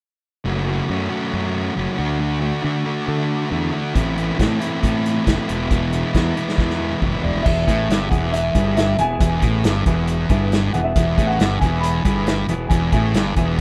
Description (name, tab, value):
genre	indie rock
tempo	137 BPM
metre	4/4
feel	straight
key	E mixolydian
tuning	A4 = 441 Hz
part	thick fuzz guitar	riff	0.4-13.6 s	E2 to F#4	-24 LUFS	equal	distortion
part	fuzz fingered electric bass	bass	0.5-13.6 s	E1 to D3	-26 LUFS	equal	overdrive
part	vintage drum kit	drums	4.0-13.5 s	crash cymbal, hi-hat, kick drum, snare drum, toms	-24 LUFS	equal	none
part	dark upright piano	melody	7.2-13.5 s	D5 to B5	-27 LUFS	equal	none
part	overdriven electric guitar	riff	7.7-13.6 s	B3 to G#4	-32 LUFS	equal	analog chorus, slapback echo
room	light reverb, small room reverb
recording	rough home demo mix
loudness	-20 LUFS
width	mono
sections	0.5-7.5 A section; 7.5-13.6 B section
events	drum fill 6.6-7.5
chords	0.5 F#m; 2.0 D; 4.0 Am; 5.5 E